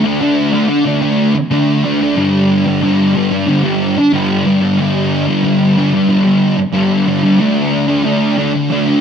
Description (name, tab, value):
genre	rock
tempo	92 BPM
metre	4/4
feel	straight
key	unclear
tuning	A4 = 440 Hz
part	thick fuzz guitar	solo	0.0-9.0 s	G2 to D4	-11 LUFS	equal	distortion, analog chorus
room	wet concert hall reverb, RT60 2.2 s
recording	dark, warm production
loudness	-11 LUFS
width	side -7 dB against mid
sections	0.0-9.0 A section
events	none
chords	0.0 D5; 2.2 G5; 7.4 D5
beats	0.20 0.85 1.51 | 2.16 2.82 3.47 4.13 | 4.78 5.43 6.09 6.75 | 7.40 8.05 8.71